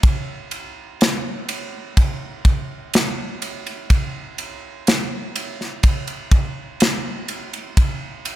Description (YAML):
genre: pop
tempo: 62 BPM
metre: 4/4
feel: straight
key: none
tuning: none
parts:
  - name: modern studio drum kit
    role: drums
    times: 0.0-8.4 s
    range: kick drum, ride cymbal, snare drum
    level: -19 LUFS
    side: equal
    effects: none
room: little or no reverb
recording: none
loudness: -19 LUFS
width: side -14 dB against mid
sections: 0.0-8.4 A section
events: none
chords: none